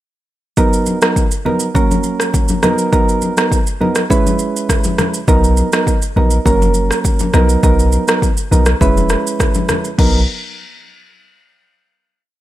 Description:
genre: afrobeats.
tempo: 102 BPM.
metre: 4/4.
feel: straight.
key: B major.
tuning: A4 = 439 Hz.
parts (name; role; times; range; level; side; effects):
soft electric-piano-like synth keys; accompaniment; 0.6-10.2 s; F#3 to B4; -16 LUFS; right 2 dB; chorus.
deep house drum kit; drums; 0.6-10.1 s; crash cymbal, kick drum, rim click, shaker; -16 LUFS; equal; overdrive.
congas; percussion; 0.9-10.3 s; none; -23 LUFS; left 5 dB; none.
clean 808-style bass; bass; 5.3-10.3 s; E1 to B1; -14 LUFS; equal; none.
room: digital ambience.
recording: none.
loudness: -12 LUFS.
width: side -14 dB against mid.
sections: 0.6-10.0 verse; 10.0-12.3 final chord.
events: none.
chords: 0.6 Bmaj7; 1.8 F#; 2.6 Bmaj7; 4.1 E6; 5.3 Bmaj7; 6.5 F#; 7.3 Bmaj7; 8.8 E6; 10.0 Bmaj7.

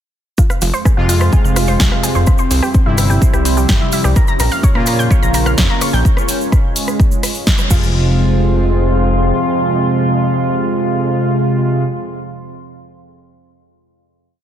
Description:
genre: melodic techno.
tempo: 127 BPM.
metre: 4/4.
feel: straight.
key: F harmonic minor.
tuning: A4 = 441 Hz.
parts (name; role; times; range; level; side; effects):
dark analog pad; sustained chords; 0.4-11.8 s; G3 to Db5; -24 LUFS; equal; chorus, sidechain pumping.
analog pluck; arpeggios; 0.4-8.1 s; G3 to Bb6; -22 LUFS; right 1 dB; chorus, sidechain pumping, digital delay.
overtone-sweeping drone; drone; 0.8-11.8 s; F2; -26 LUFS; right 1 dB; none.
electronic kick drum; drums; 0.4-7.8 s; none; -13 LUFS; equal; studio reverb.
cabasa; percussion; 0.4-7.9 s; none; -25 LUFS; right 5 dB; none.
warbly tape-like pad; texture; 0.4-12.3 s; C4 to C6; -24 LUFS; right 1 dB; chorus, built-in reverb, sidechain pumping.
house drum kit; drums; 0.5-7.8 s; crash cymbal, hi-hat, rim click, snare drum; -21 LUFS; left 1 dB; studio reverb.
fat analog bass; bass; 0.6-9.3 s; F1 to Bb2; -15 LUFS; equal; sidechain pumping.
analog synth brass; stabs; 1.0-11.8 s; C3 to F4; -18 LUFS; equal; chorus, cassette tape, sidechain pumping, digital delay.
room: light reverb.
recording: dense, heavily limited modern master.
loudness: -12 LUFS.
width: side -10 dB against mid.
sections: 0.4-7.9 drop; 7.9-11.7 final chord.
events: drop 0.4-7.9; band accent 7.5.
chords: 0.4 Fm; 2.3 C; 4.2 Bbm; 6.1 Db; 7.7 Fm.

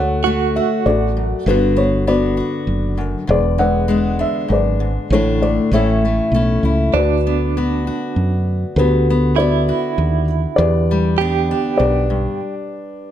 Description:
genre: folk.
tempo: 99 BPM.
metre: 3/4.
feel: straight.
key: D major.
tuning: A4 = 440 Hz.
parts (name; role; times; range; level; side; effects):
felt-muted upright piano; melody; 0.0-13.1 s; D4 to F#5; -20 LUFS; left 2 dB; none.
fingerpicked steel-string acoustic guitar; accompaniment; 0.0-13.1 s; D2 to F#4; -21 LUFS; left 3 dB; none.
woody fretless electric bass; bass; 0.0-12.3 s; E1 to F#2; -18 LUFS; right 1 dB; none.
direct-recorded clean electric guitar; arpeggios; 0.2-1.6, 6.9-12.5 s; D4 to G4; -22 LUFS; right 11 dB; tremolo.
room: light reverb.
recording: close, detailed microphones.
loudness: -15 LUFS.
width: side -10 dB against mid.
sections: 0.0-13.1 A section.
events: stop 12.4-13.1.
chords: 0.0 Dmaj7; 1.5 Gmaj7; 3.3 E7; 5.1 Asus4; 5.7 A; 6.9 D6; 8.8 Gmaj7/D; 10.6 Em7; 12.4 G/D.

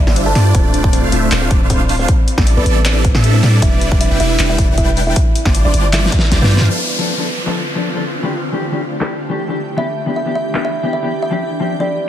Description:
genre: future bass.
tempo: 156 BPM.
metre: 4/4.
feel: half-time.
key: D dorian.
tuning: A4 = 438 Hz.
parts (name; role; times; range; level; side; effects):
long sustained 808-style bass; bass; 0.0-6.7 s; D1 to A2; -15 LUFS; equal; sidechain pumping.
supersaw chords; riff; 0.1-6.7 s; G3 to G5; -20 LUFS; right 1 dB; phaser, sidechain pumping, low-pass filter.
big-room dance drum kit; drums; 0.1-10.6 s; handclaps, hi-hat, snare drum; -21 LUFS; equal; low-pass filter on hats, studio reverb, low-pass filter on snare.
kalimba; melody; 0.3-6.6, 9.8-12.0 s; B3 to A5; -22 LUFS; right 1 dB; sidechain pumping, tape echo.
electronic kick drum; drums; 0.5-6.4 s; none; -14 LUFS; equal; studio reverb.
mellow electric guitar; accompaniment; 6.7-11.9 s; E3 to A4; -21 LUFS; left 4 dB; sidechain pumping, digital delay.
shimmering ambient pad; sustained chords; 7.3-12.1 s; D3 to G4; -24 LUFS; equal; chorus, built-in reverb, sidechain pumping.
downlifter; sound effects; 6.7-9.8 s; none; -24 LUFS; left 1 dB; none.
room: little or no reverb.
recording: dense, heavily limited modern master.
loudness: -12 LUFS.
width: side -11 dB against mid.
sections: 0.0-6.7 A section; 6.7-12.1 B section.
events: drop 0.0-6.7; drum fill 5.9-6.7.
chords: 0.0 G7sus4; 0.5 Dm7; 2.1 A7sus4; 3.6 Em7; 5.2 G7sus4; 6.7 Dm7; 8.2 A7sus4; 9.8 Em7; 11.3 G7sus4.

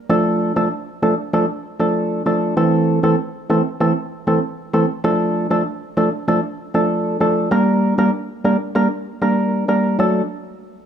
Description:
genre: dancehall.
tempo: 97 BPM.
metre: 4/4.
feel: straight.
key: D minor.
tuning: A4 = 440 Hz.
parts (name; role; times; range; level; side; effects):
percussive organ stab; solo; 0.1-10.2 s; E3 to Bb4; -16 LUFS; right 1 dB; chorus.
room: light reverb, digital ambience.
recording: small room ambience.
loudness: -16 LUFS.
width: side -8 dB against mid.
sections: 0.0-10.0 A section.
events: none.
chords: 0.1 Dm; 2.6 Am; 5.0 Dm; 7.5 Gm; 10.0 D.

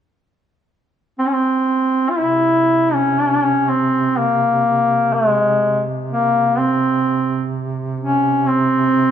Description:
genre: caucasian folk, Caucasian lament.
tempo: 62 BPM.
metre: 3/4.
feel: rubato.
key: C phrygian dominant.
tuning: A4 = 440 Hz.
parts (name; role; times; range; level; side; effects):
clear duduk; melody; 1.2-9.1 s; Ab3 to F4; -15 LUFS; equal; none.
warm duduk; drone; 2.2-9.1 s; C3; -24 LUFS; right 3 dB; none.
room: moderate scoring stage reverb, RT60 1.9 s.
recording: minimal, uncompressed stereo recording.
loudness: -15 LUFS.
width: side -9 dB against mid.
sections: 0.0-2.2 A section; 2.2-9.1 B section.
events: none.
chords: none.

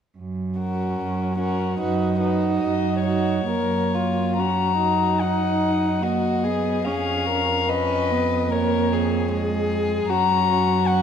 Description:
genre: classical, slow romantic movement for string quartet.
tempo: 73 BPM.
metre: 4/4.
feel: uneven beats, rubato.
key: F# major.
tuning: A4 = 442 Hz.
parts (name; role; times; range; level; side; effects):
warm cello; bass; 0.2-11.0 s; E#2 to F#2; -25 LUFS; right 2 dB; none.
dark violin; melody; 0.6-11.0 s; A#4 to A#5; -25 LUFS; left 9 dB; none.
warm violin; second line; 0.6-11.0 s; D#4 to B4; -26 LUFS; left 2 dB; none.
dark viola; accompaniment; 0.6-11.0 s; G#3 to D#4; -26 LUFS; right 4 dB; none.
room: moderate recital hall reverb, RT60 1.5 s.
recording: dark, warm production.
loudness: -20 LUFS.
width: side -8 dB against mid.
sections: 0.2-3.5 A section; 3.5-11.0 B section.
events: none.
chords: 0.2 F#; 1.8 B/F#; 3.5 F#; 5.2 F#69; 6.9 C#7/E#; 10.1 F#.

